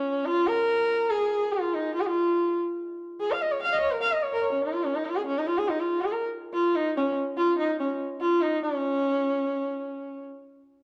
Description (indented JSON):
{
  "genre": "indian classical",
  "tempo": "144 BPM",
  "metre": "4/4",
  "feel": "straight",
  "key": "Db raga bhupali",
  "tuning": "A4 = 440 Hz",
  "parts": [
    { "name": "dark sarangi", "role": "solo", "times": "0.0-10.2 s", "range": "Db4 to F5", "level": "-27 LUFS", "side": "equal", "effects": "none" }
  ],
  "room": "moderate recital hall reverb, RT60 1.5 s",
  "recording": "dark, warm production",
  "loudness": "-27 LUFS",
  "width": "mono",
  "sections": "0.0-8.6 A section; 8.6-10.8 B section",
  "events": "speeding up 0.0-10.8",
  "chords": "none",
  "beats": "| 0.25 0.68 1.10 1.52 | 1.94 2.36 2.79 3.21 | 3.62 4.04 4.46 4.88 | 5.30 5.71 6.13 6.55 | 6.96 7.38 7.79 8.20 | 8.62 9.03 9.44 9.85"
}